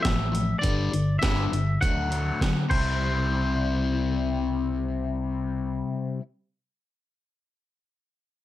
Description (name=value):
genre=indie rock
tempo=102 BPM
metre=4/4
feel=straight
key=C major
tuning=A4 = 440 Hz
part: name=twangy electric guitar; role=melody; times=0.0-5.8 s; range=C5 to F#5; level=-31 LUFS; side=equal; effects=slapback echo
part: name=crunchy overdriven guitar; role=riff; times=0.0-6.2 s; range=G2 to E4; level=-28 LUFS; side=left 5 dB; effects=phaser
part: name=boom bap sampler-style drum kit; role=drums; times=0.0-2.8 s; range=crash cymbal, hi-hat, kick drum, snare drum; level=-28 LUFS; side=right 1 dB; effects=none
part: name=fingered electric bass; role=bass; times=0.1-5.8 s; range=G1 to D3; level=-28 LUFS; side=right 1 dB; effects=none
room=light reverb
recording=none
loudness=-23 LUFS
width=side -14 dB against mid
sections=0.0-3.0 A section; 3.0-5.4 B section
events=drum fill 2.7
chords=0.0 F; 0.6 G5; 1.8 D; 2.7 C